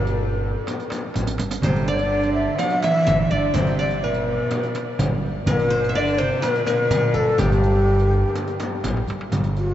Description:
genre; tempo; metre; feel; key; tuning
Arabic maqam ensemble; 125 BPM; 4/4; straight; G maqam rast; A4 = 440 Hz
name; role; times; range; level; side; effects
breathy mellow ney; melody; 0.0-9.7 s; F#4-44c to F#5-47c; -23 LUFS; left 2 dB; none
qanun; second line; 0.0-8.8 s; G4 to F#5-50c; -29 LUFS; right 2 dB; none
rich chamber cello section; second line; 0.0-8.8 s; G2 to F#3-50c; -26 LUFS; right 2 dB; none
upright bass; bass; 0.0-9.7 s; G1 to A1; -24 LUFS; equal; none
darbuka; percussion; 0.1-9.7 s; none; -29 LUFS; right 2 dB; none
riq; percussion; 0.1-9.6 s; none; -36 LUFS; right 5 dB; none
frame drum; percussion; 0.7-9.4 s; none; -28 LUFS; left 1 dB; none
room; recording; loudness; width
wet huge ambient reverb, RT60 7.4 s; in a vast, echoing space, nothing above 7.8 kHz; -18 LUFS; side -12 dB against mid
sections
0.0-9.3 A section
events
drum fill 1.1-1.6, 8.8-9.3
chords
none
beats
0.19 0.67 1.15 | 1.63 2.11 2.59 3.07 | 3.55 4.03 4.51 4.99 | 5.47 5.95 6.43 6.92 | 7.40 7.88 8.36 8.84 | 9.32

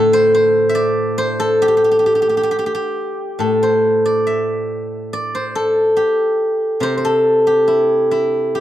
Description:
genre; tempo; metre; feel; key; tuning
chinese traditional, Chinese solo plucked strings; 70 BPM; 2/4; rubato; unclear; A4 = 440 Hz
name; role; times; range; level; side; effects
steel-string zither; solo; 0.0-8.6 s; A2 to A5; -14 LUFS; equal; none
room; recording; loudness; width
moderate small room ambience, RT60 0.5 s; dry, close 1970s-style studio recording; -14 LUFS; side -12 dB against mid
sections
0.0-3.4 A section; 3.4-8.6 B section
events
none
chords
none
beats
0.76 | 1.62 2.50 | 3.40 4.28 | 5.14 5.99 | 6.83 7.67 | 8.53

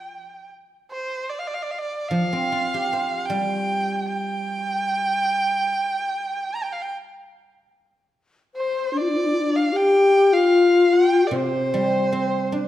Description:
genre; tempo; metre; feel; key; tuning
chinese traditional, Chinese chamber ensemble; 75 BPM; 4/4; straight; unclear; A4 = 442 Hz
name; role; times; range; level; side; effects
clear erhu; melody; 0.0-12.7 s; C5 to Bb5; -24 LUFS; right 2 dB; none
guzheng; accompaniment; 0.0-5.7, 11.3-12.7 s; C3 to C5; -26 LUFS; right 2 dB; none
breathy mellow low xiao; second line; 8.5-12.7 s; D4 to C5; -18 LUFS; left 2 dB; none
room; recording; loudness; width
wet recital hall reverb, RT60 1.7 s; none; -19 LUFS; side -13 dB against mid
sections
0.0-7.3 A section; 7.3-12.7 B section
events
none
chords
none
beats
0.14 | 0.92 1.71 2.51 3.30 | 4.10 4.90 5.71 6.52 | 7.33 8.14 8.95 9.75 | 10.55 11.34 12.13

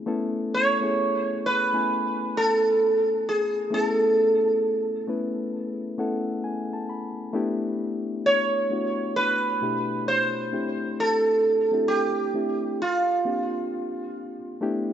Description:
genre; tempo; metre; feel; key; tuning
R&B; 66 BPM; 4/4; swing 63% on 16ths; A major; A4 = 440 Hz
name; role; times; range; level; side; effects
mellow reed electric piano; accompaniment; 0.0-14.9 s; B2 to B5; -28 LUFS; left 3 dB; none
sitar; melody; 0.5-14.1 s; F4 to C#5; -22 LUFS; right 2 dB; none
room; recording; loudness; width
moderate lush hall reverb, RT60 2.9 s; rough home demo mix, nothing above 7.9 kHz; -22 LUFS; side -10 dB against mid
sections
0.0-7.3 A section; 7.3-14.9 B section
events
reed electric piano fill 5.5-7.3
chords
0.0 Amaj9; 7.3 A9sus4; 10.5 D9sus4; 12.8 C9sus4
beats
| 0.07 0.97 1.88 2.79 | 3.70 4.61 5.52 6.43 | 7.34 8.25 9.16 10.07 | 10.97 11.88 12.79 13.70 | 14.61

